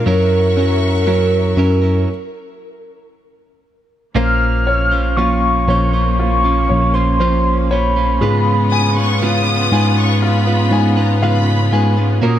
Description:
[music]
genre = pop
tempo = 59 BPM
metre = 4/4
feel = straight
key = Bb minor from 4.2 s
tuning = A4 = 439 Hz
[part]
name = mellow horn-like synth lead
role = melody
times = 0.0-12.4 s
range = A#4 to F6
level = -19 LUFS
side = equal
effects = chorus
[part]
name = clear concert grand piano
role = accompaniment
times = 0.0-12.4 s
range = F#3 to Ab5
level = -21 LUFS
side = left 3 dB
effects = none
[part]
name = clear studio string section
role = sustained chords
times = 0.0-12.4 s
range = Bb3 to C#6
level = -24 LUFS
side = left 2 dB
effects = none
[part]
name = direct-recorded clean electric guitar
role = arpeggios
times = 0.0-12.4 s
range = Ab2 to C5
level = -21 LUFS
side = right 7 dB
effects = none
[part]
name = mellow tine electric piano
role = bass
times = 0.1-12.4 s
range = Bb1 to Bb2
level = -16 LUFS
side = left 1 dB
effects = none
[part]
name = warm studio violin section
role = second line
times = 8.7-11.9 s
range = Bb5 to Eb6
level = -22 LUFS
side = left 1 dB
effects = none
[sound]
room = small room ambience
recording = none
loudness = -12 LUFS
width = side -11 dB against mid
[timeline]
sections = 0.0-4.2 A section; 4.2-12.4 B section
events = stop 2.1-4.2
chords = 0.1 F#7; 4.2 Bbmadd9; 8.2 Db7/Ab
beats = | 0.07 1.07 2.09 3.12 | 4.16 5.18 6.19 7.21 | 8.22 9.22 10.23 11.22 | 12.23

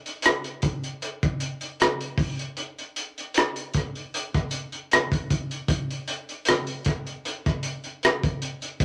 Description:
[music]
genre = R&B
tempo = 77 BPM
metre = 4/4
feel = swing 55% on 16ths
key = none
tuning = none
[part]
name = crunchy breakbeat drum kit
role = drums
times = 0.1-8.8 s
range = hi-hat, kick drum, rim click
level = -26 LUFS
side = equal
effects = none
[sound]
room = moderate club reverb, RT60 0.7 s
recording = none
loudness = -27 LUFS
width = mono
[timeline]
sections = 0.0-8.8 A section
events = none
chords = none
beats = 0.23 1.01 1.79 | 2.57 3.35 4.12 4.90 | 5.68 6.46 7.24 8.02 | 8.80

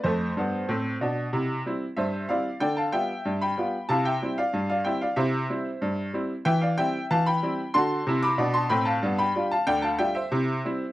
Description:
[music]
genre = ragtime piano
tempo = 93 BPM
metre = 2/4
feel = straight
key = C major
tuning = A4 = 440 Hz
[part]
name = bright upright piano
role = solo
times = 0.0-10.9 s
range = D2 to D6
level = -23 LUFS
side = equal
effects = none
[sound]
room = light reverb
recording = close, detailed microphones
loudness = -23 LUFS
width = side -16 dB against mid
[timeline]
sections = 0.0-10.9 A section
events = none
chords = 0.0 F; 1.3 C; 2.6 G7/D; 3.9 C; 6.5 C/E; 7.7 D7; 9.0 G7; 10.3 C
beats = | 0.04 0.69 | 1.33 1.97 | 2.61 3.25 | 3.90 4.54 | 5.18 5.82 | 6.46 7.10 | 7.75 8.39 | 9.03 9.68 | 10.32

